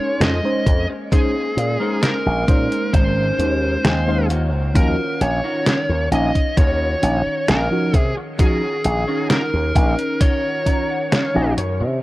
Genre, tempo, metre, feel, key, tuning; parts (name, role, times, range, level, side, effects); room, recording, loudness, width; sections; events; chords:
vaporwave; 66 BPM; 4/4; straight; A4 = 441 Hz
smooth overdriven lead guitar; melody; 0.0-11.5 s; Ab4 to Eb5; -23 LUFS; equal; tape echo
mellow FM electric piano; accompaniment; 0.0-11.6 s; F3 to C6; -24 LUFS; equal; analog chorus
warbly tape-like pad; sustained chords; 0.0-12.0 s; Eb3 to F5; -32 LUFS; right 1 dB
electric guitar at the edge of break-up; riff; 0.0-11.8 s; Db4 to Bb5; -31 LUFS; left 2 dB; ensemble chorus, tape echo
slap bass with an envelope filter; bass; 0.2-12.0 s; Ab1 to C3; -20 LUFS; equal; tube saturation
detuned 8-bit digital drum machine; drums; 0.2-11.8 s; hi-hat, snare drum; -20 LUFS; equal; overdrive
electronic kick drum; drums; 0.7-10.8 s; -16 LUFS; equal
light reverb, digital ambience; cassette tape; -16 LUFS; side -18 dB against mid
0.0-12.0 A section
clean electric guitar fill 3.4-4.8, 10.2-12.0
0.0 Bbm11; 4.3 Ebm9